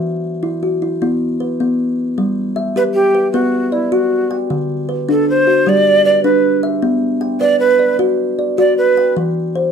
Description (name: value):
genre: southern african traditional, mbira-style interlocking cycle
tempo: 103 BPM (dotted quarters)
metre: 12/8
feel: straight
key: G major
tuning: A4 = 441 Hz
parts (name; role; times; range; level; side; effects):
- kalimba; arpeggios; 0.0-9.7 s; D3 to G5; -16 LUFS; left 1 dB; none
- breathy low Native American-style wooden flute; melody; 2.8-9.1 s; E4 to D5; -13 LUFS; right 3 dB; plate reverb
room: wet studio ambience, RT60 0.5 s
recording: none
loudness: -13 LUFS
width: side -7 dB against mid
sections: 0.0-2.2 A section; 2.2-9.7 B section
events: none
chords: 0.0 E5; 2.2 G; 3.3 Bm; 4.5 D; 5.7 G; 6.8 Bm; 9.2 Em